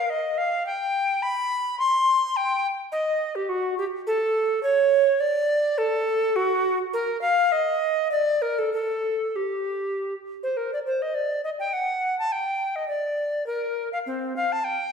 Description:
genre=classical, baroque-style fantasia for unaccompanied recorder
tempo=104 BPM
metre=3/4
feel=rubato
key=G minor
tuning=A4 = 441 Hz
part: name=bright tenor recorder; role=solo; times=0.0-14.9 s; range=C4 to C6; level=-22 LUFS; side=equal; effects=none
room=wet recital hall reverb, RT60 1.4 s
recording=heard from further back in the room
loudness=-22 LUFS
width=side -6 dB against mid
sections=0.0-10.6 A section; 10.6-14.9 A section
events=none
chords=none

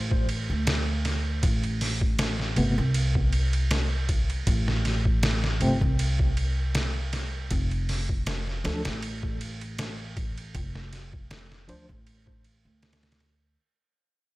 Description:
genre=trip hop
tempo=79 BPM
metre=4/4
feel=swing 54% on 16ths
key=unclear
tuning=A4 = 440 Hz
part: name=upright bass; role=bass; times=0.0-13.6 s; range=F1 to D2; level=-27 LUFS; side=equal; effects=none
part: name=trip hop sampler-style drum kit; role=drums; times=0.1-13.4 s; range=hi-hat, kick drum, ride cymbal, snare drum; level=-28 LUFS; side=equal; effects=none
part: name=mellow tine electric piano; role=accompaniment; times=2.6-11.8 s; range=C3 to C5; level=-29 LUFS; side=equal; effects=tremolo, tape echo
room=little or no reverb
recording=none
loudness=-24 LUFS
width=side -19 dB against mid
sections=0.0-13.6 A section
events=fade-out 5.5-13.6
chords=0.0 F6 (rootless); 1.4 Am; 7.5 F6

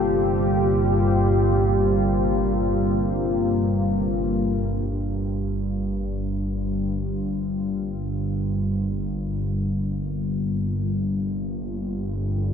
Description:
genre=dark ambient drone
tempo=free time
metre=none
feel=none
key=G minor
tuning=A4 = 436 Hz
part: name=mellow horn-like synth lead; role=melody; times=0.0-3.7 s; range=G4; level=-26 LUFS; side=equal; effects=analog chorus, vintage 12-bit sampler grit, tape echo
part: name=deep dark ambient pad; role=sustained chords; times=0.0-12.5 s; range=G3 to F4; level=-27 LUFS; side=left 2 dB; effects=chorus, built-in reverb
part: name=analog drone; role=drone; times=0.0-12.5 s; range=G1 to G2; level=-23 LUFS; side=equal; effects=chorus
room=wet huge ambient reverb, RT60 6.9 s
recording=dark, warm production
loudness=-21 LUFS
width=side -7 dB against mid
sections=0.0-4.9 A section; 4.9-12.5 B section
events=filter sweep on synth drone 0.0-4.9; fade-in on ambient pad 4.9-12.5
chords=0.0 Gm

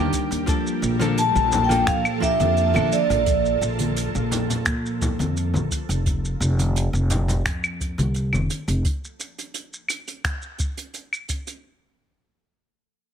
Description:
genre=sunset chillout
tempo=86 BPM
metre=4/4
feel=straight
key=F major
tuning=A4 = 440 Hz
part: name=vintage hollow-body jazz guitar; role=accompaniment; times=0.0-3.2 s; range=Eb3 to A4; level=-26 LUFS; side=moving between left 5 dB and right 2 dB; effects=auto-pan, ping-pong delay
part: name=ethereal airy pad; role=sustained chords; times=0.0-6.0 s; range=F3 to A4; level=-28 LUFS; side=equal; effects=ensemble chorus, built-in reverb
part: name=upright bass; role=bass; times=0.0-8.8 s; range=F1 to Bb2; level=-24 LUFS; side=equal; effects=none
part: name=electronic kick drum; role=drums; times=0.1-11.4 s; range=none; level=-26 LUFS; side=equal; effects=none
part: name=vintage brush drum kit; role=drums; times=0.1-11.6 s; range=claves, finger snaps, hi-hat, shaker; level=-28 LUFS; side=right 1 dB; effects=none
part: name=congas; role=percussion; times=1.0-8.5 s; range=none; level=-28 LUFS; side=left 2 dB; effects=none
part: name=vibraphone with medium hard mallets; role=melody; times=1.2-3.6 s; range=D5 to A5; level=-22 LUFS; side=right 1 dB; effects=ping-pong delay
room=light reverb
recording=none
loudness=-20 LUFS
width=side -8 dB against mid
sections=0.0-11.6 A section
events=none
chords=0.5 Bbmaj7; 6.1 F5

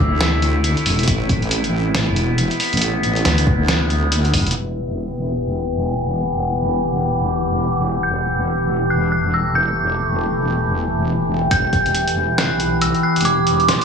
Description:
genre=deep dubstep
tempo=138 BPM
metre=4/4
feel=swing 60% on 16ths, half-time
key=E minor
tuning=A4 = 440 Hz
part: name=dark detuned synth bell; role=melody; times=0.0-0.8, 8.0-13.8 s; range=C6 to G6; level=-22 LUFS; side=equal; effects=chorus, dub echo
part: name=overtone-sweeping drone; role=sustained chords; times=0.0-13.8 s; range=C3 to G4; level=-20 LUFS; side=left 1 dB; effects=chorus, built-in reverb
part: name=wobble bass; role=bass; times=0.0-13.8 s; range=E1 to D2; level=-21 LUFS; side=equal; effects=chorus
part: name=trip hop sampler-style drum kit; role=drums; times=0.2-4.6, 11.5-13.8 s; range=hi-hat, snare drum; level=-21 LUFS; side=equal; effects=none
part: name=electronic kick drum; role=drums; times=1.1-4.4, 11.5-11.8 s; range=none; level=-20 LUFS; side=equal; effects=overdrive
room=moderate echo chamber reverb, RT60 1.5 s, digital ambience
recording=low-pass filter, small room ambience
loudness=-16 LUFS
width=side -6 dB against mid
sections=0.0-4.6 A section; 4.6-11.5 B section; 11.5-13.8 C section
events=drop 0.0-4.6; build-up 11.5-13.8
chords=0.0 Am; 4.6 Em

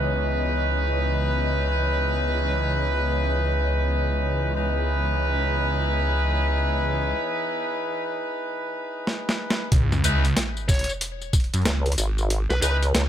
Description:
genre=glitch hop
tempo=93 BPM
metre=4/4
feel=swing 63% on 16ths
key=C# minor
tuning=A4 = 440 Hz
part: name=bright horn section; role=stabs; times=0.0-12.8 s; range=D#4 to B4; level=-26 LUFS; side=equal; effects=sidechain pumping, ping-pong delay
part: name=phased detuned saw bass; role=bass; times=0.0-11.6 s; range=B1 to F#2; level=-24 LUFS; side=equal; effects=phaser, tube saturation
part: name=airy breathy pad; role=texture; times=0.0-7.1 s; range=E3 to D#5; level=-32 LUFS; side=left 1 dB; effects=chorus, sidechain pumping
part: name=boom bap sampler-style drum kit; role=drums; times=9.1-13.1 s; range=hi-hat, snare drum, tambourine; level=-26 LUFS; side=equal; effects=none
part: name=electronic kick drum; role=drums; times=9.7-11.5 s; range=none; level=-20 LUFS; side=equal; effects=none
part: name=sub drop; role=sound effects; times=9.7-12.3 s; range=none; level=-30 LUFS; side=equal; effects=none
part: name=smooth overdriven lead guitar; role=melody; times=10.7-12.8 s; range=B4 to C#5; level=-31 LUFS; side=equal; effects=ping-pong delay
part: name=vowel-sweep wobble bass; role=bass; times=11.7-13.1 s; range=G#1 to C#2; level=-22 LUFS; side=equal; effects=chorus
room=light reverb, digital ambience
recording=none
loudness=-21 LUFS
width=side -10 dB against mid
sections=0.0-9.7 A section; 9.7-13.1 B section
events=break 7.1-9.7; drum fill 9.1-9.7; drop 9.7-13.1; impact 9.7-12.3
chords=0.0 C#m9; 9.7 C#7(no3)

